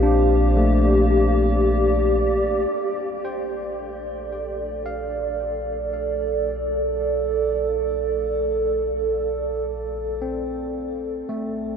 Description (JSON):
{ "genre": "ambient", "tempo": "56 BPM", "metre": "4/4", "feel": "straight", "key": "Bb major", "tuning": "A4 = 439 Hz", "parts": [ { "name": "warbly tape-like pad", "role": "sustained chords", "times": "0.0-11.8 s", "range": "A3 to F5", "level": "-22 LUFS", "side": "right 1 dB", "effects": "chorus, built-in reverb, shimmer reverb" }, { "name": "barky tine electric piano", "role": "arpeggios", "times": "0.0-11.8 s", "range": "A3 to G5", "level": "-27 LUFS", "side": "right 1 dB", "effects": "ping-pong delay" }, { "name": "warm sub bass", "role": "bass", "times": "0.0-11.8 s", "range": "Bb1", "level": "-26 LUFS", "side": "left 1 dB", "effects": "none" } ], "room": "wet huge ambient reverb, RT60 9.0 s", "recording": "in a vast, echoing space", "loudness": "-20 LUFS", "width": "side -7 dB against mid", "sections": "0.0-2.7 A section; 2.7-11.8 B section", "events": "fade-in on tine electric piano 2.7-11.8; fade-in on sub bass 2.7-11.8; filter sweep on ambient pad 2.7-11.8", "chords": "0.0 Gm7/Bb", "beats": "0.57 1.64 | 2.71 3.79 4.86 5.93 | 7.00 8.07 9.14 10.21 | 11.29" }